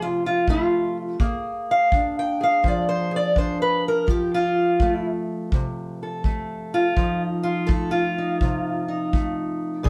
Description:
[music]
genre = acoustic country blues, solo or duo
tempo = 83 BPM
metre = 4/4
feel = swing 66% on 8ths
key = F mixolydian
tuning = A4 = 439 Hz
[part]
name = fingerpicked steel-string acoustic guitar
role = melody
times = 0.0-9.9 s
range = Bb2 to G5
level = -24 LUFS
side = equal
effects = plate reverb
[part]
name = kick drum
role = drums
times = 0.5-9.9 s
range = none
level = -25 LUFS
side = equal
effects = none
[sound]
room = moderate studio reverb, RT60 0.6 s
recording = heard from further back in the room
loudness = -23 LUFS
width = mono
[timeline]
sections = 0.0-9.9 A section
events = steel-string acoustic guitar solo 0.0-9.9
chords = 0.0 F; 1.2 Bb7; 4.1 F7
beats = 0.47 | 1.20 1.92 2.64 3.36 | 4.08 4.80 5.53 6.25 | 6.97 7.69 8.41 9.14 | 9.86

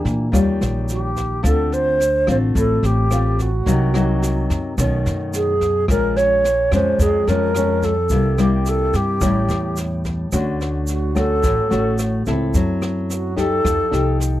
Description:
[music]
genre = bossa nova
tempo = 108 BPM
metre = 4/4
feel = straight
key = D major from 10.3 s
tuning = A4 = 441 Hz
[part]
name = nylon-string guitar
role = accompaniment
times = 0.0-14.4 s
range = F2 to A4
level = -22 LUFS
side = left 2 dB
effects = none
[part]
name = upright bass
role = bass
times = 0.1-14.4 s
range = A1 to Bb2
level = -21 LUFS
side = equal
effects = none
[part]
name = jazz brush drum kit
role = drums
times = 0.1-14.3 s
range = kick drum, rim click, snare drum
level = -26 LUFS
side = equal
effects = none
[part]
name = egg shaker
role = percussion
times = 0.1-14.4 s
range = none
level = -34 LUFS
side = right 4 dB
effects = none
[part]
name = wooden-headed alto flute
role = melody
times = 0.9-14.2 s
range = F#4 to Db5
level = -20 LUFS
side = right 1 dB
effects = none
[sound]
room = light reverb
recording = dry, close 1970s-style studio recording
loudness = -16 LUFS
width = side -14 dB against mid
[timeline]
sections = 0.0-10.3 A section; 10.3-14.4 B section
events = alto flute solo 10.3-14.4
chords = 0.3 Eb9; 1.4 Dm7; 3.7 Cm7b5; 4.8 B9; 5.9 Bbm7; 8.1 C7; 9.2 A7; 10.3 Dmaj7; 12.5 F#m7b5; 13.7 F9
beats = 0.33 0.89 | 1.44 2.00 2.55 3.11 | 3.66 4.22 4.77 5.33 | 5.88 6.44 6.99 7.55 | 8.10 8.66 9.21 9.77 | 10.32 10.88 11.43 11.99 | 12.54 13.10 13.65 14.20

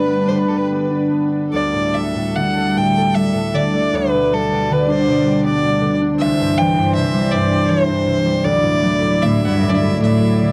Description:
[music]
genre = celtic folk, Celtic slow air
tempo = 70-82 BPM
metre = 3/4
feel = rubato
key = unclear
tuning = A4 = 443 Hz
[part]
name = rich fiddle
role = melody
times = 0.0-10.5 s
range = A4 to G5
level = -22 LUFS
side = equal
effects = none
[part]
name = concert harp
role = accompaniment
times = 0.0-10.5 s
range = C2 to A4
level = -20 LUFS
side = equal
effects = none
[part]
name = warm studio string section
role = sustained chords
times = 0.0-10.5 s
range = D3 to D5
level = -24 LUFS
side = equal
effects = none
[part]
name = clear cello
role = second line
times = 9.2-10.5 s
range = F#2 to A2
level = -18 LUFS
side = equal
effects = none
[sound]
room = little or no reverb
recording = dry, close 1970s-style studio recording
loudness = -17 LUFS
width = mono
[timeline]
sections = 0.0-1.5 A section; 1.5-10.5 B section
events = none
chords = 0.0 G; 1.5 Dsus4; 6.2 Cadd9; 8.4 Dadd9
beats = 0.67 | 1.50 2.33 3.13 | 3.91 4.68 5.43 | 6.19 6.94 7.68 | 8.44 9.21 10.00

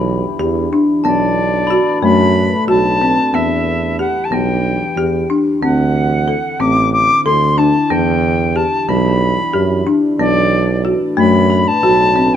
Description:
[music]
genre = contemporary instrumental, chamber music in an uneven meter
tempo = 184 BPM (eighths)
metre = 7/8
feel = straight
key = E minor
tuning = A4 = 442 Hz
[part]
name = deep dark ambient pad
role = sustained chords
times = 0.0-12.4 s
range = D3 to B4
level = -24 LUFS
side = equal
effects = chorus, built-in reverb
[part]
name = folk marimba with medium hard mallets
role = arpeggios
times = 0.0-12.3 s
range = A3 to A4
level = -16 LUFS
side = left 3 dB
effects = none
[part]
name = warm tuba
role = bass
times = 0.0-12.3 s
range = A1 to F#2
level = -17 LUFS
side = right 4 dB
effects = none
[part]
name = glockenspiel with soft plastic mallets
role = texture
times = 0.0-2.6, 11.5-12.4 s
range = A5 to B5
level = -24 LUFS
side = left 8 dB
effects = none
[part]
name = silver concert flute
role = melody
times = 1.0-12.4 s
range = D5 to D6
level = -17 LUFS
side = left 1 dB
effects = none
[sound]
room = light reverb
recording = none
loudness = -12 LUFS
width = side -9 dB against mid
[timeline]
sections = 0.0-12.4 A section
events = none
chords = 0.0 Em7; 1.0 Bm7; 3.3 Em7; 5.6 D9; 7.9 Em9; 10.2 Bm7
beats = 0.07 0.39 0.72 | 1.05 1.37 1.70 2.03 2.35 2.68 3.01 | 3.33 3.66 3.99 4.31 4.64 4.97 5.29 | 5.62 5.95 6.27 6.60 6.93 7.25 7.58 | 7.91 8.23 8.56 8.89 9.21 9.54 9.87 | 10.20 10.52 10.85 11.18 11.50 11.83 12.16

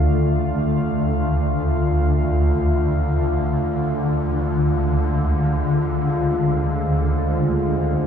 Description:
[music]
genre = dark ambient drone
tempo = free time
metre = none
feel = none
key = unclear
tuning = A4 = 440 Hz
[part]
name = deep dark ambient pad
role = sustained chords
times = 0.0-8.1 s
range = Ab3 to F5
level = -24 LUFS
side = equal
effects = chorus, built-in reverb
[part]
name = swarming drone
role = drone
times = 0.0-8.1 s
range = D2 to D3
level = -19 LUFS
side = equal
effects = built-in reverb
[sound]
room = wet cathedral reverb, RT60 6.4 s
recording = dark, warm production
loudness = -18 LUFS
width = side -8 dB against mid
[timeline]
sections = 0.0-8.1 A section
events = none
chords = 0.0 Dm; 4.0 Fm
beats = free time

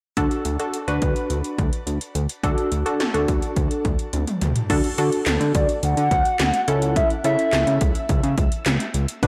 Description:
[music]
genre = synth-pop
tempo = 106 BPM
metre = 4/4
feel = straight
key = D major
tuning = A4 = 440 Hz
[part]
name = funky polysynth comp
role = accompaniment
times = 0.2-9.3 s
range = C#4 to B4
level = -28 LUFS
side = equal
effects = chorus, shimmer reverb
[part]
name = fat analog bass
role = bass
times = 0.2-9.3 s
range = B1 to D3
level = -25 LUFS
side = equal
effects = none
[part]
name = 80s electronic pad drums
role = drums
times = 0.2-9.3 s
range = crash cymbal, handclaps, hi-hat, kick drum, snare drum, toms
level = -26 LUFS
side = equal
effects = gated reverb on snare and toms, overdrive
[part]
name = hollow clarinet-like synth lead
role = melody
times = 5.5-7.8 s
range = D5 to F#5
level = -25 LUFS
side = equal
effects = chorus, shimmer reverb, delay
[sound]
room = moderate plate reverb, RT60 2.1 s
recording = blown-out, overdriven recording, overdrive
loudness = -22 LUFS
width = mono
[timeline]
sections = 0.2-4.7 A section; 4.7-9.3 B section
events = drum fill 4.1-4.7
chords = 0.2 D; 6.7 A/C#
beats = | 0.17 0.74 1.30 1.87 | 2.43 3.00 3.57 4.13 | 4.70 5.26 5.83 6.40 | 6.96 7.53 8.09 8.66 | 9.23

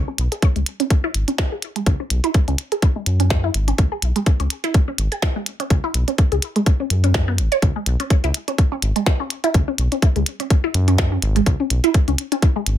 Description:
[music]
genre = minimal techno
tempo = 125 BPM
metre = 4/4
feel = swing 56% on 16ths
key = C# minor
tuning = A4 = 440 Hz
[part]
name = round analog bass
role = bass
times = 0.0-12.8 s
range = G#1 to F#2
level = -19 LUFS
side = equal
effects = sidechain pumping
[part]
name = resonant blip pluck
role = riff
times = 0.1-12.6 s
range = G#3 to C#5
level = -23 LUFS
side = right 1 dB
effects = phaser, sidechain pumping, ping-pong delay
[part]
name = minimal click drum kit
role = drums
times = 0.2-12.8 s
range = hi-hat, snare drum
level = -24 LUFS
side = equal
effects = overdrive
[part]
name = electronic kick drum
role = drums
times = 0.4-12.5 s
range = none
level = -16 LUFS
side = equal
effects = overdrive
[sound]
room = light reverb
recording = none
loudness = -17 LUFS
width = side -11 dB against mid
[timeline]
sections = 0.0-12.8 A section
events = none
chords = 0.0 C#7(no3)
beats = 0.42 0.90 1.38 | 1.86 2.34 2.82 3.30 | 3.78 4.26 4.74 5.22 | 5.70 6.18 6.66 7.14 | 7.62 8.10 8.58 9.06 | 9.54 10.02 10.50 10.98 | 11.46 11.94 12.42

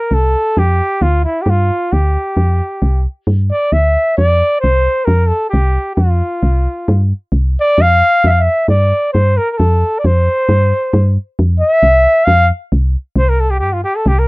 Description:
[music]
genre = balkan folk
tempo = 133 BPM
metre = 2/4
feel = straight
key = F major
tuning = A4 = 439 Hz
[part]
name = warm flugelhorn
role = melody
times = 0.0-14.3 s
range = E4 to F5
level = -14 LUFS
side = equal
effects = none
[part]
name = woody FM bass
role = bass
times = 0.1-14.3 s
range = C2 to G2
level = -12 LUFS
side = equal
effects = none
[sound]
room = little or no reverb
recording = dry, close 1970s-style studio recording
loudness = -11 LUFS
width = side -22 dB against mid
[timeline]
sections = 0.0-13.2 A section; 13.2-14.3 B section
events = flugelhorn solo 0.0-13.2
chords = 0.0 N.C.; 0.6 Dmadd11; 1.5 G5; 2.4 F5; 3.3 G5; 4.2 F5; 6.9 Csus2; 7.8 N.C.; 8.7 G5; 9.6 F; 10.5 Gsus4; 11.4 F5; 13.2 C5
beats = 0.11 | 0.56 1.01 | 1.47 1.92 | 2.37 2.82 | 3.27 3.73 | 4.18 4.63 | 5.08 5.53 | 5.98 6.43 | 6.88 7.33 | 7.79 8.23 | 8.69 9.13 | 9.58 10.03 | 10.48 10.93 | 11.38 11.82 | 12.27 12.71 | 13.16 13.61 | 14.05

